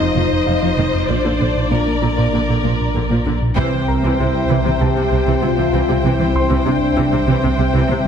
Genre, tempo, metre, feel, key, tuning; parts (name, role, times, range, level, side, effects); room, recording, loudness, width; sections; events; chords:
cinematic, hybrid orchestral and electronic film score; 97 BPM; 4/4; straight; A4 = 442 Hz
clear symphonic violin section; melody; 0.0-8.1 s; D5 to G5; -26 LUFS; left 4 dB
rich chamber violin section; second line; 0.0-8.1 s; Bb4 to C5; -26 LUFS; left 3 dB
rich symphonic viola section; accompaniment; 0.0-8.0 s; C3 to F3; -27 LUFS; right 1 dB
dark French horn section; sustained chords; 0.0-8.1 s; C4 to G4; -21 LUFS; left 3 dB
warbly tape-like pad; sustained chords; 0.0-8.1 s; F3 to E5; -24 LUFS; left 1 dB; chorus, built-in reverb
analog pluck; arpeggios; 0.0-8.1 s; C3 to Bb4; -26 LUFS; equal
round analog bass; riff; 0.0-8.1 s; C2 to Bb3; -23 LUFS; right 2 dB
punchy sub bass; bass; 0.0-8.1 s; F1 to C2; -24 LUFS; equal
rich symphonic cello section; bass; 0.0-8.1 s; F2 to C3; -24 LUFS; right 3 dB
clear concert grand piano; texture; 0.0-8.1 s; Bb4 to C6; -31 LUFS; left 1 dB
rich symphonic double bass section; bass; 0.2-8.0 s; F1 to C2; -24 LUFS; right 5 dB
taiko ensemble; drums; 3.6-4.8 s; -32 LUFS; left 2 dB
moderate scoring stage reverb, RT60 1.8 s; heavily compressed radio sound, multiband compression; -14 LUFS; side -7 dB against mid
0.0-3.6 A section; 3.6-8.1 B section
band accent 3.6-4.2
0.0 F7; 1.1 Bb; 3.6 C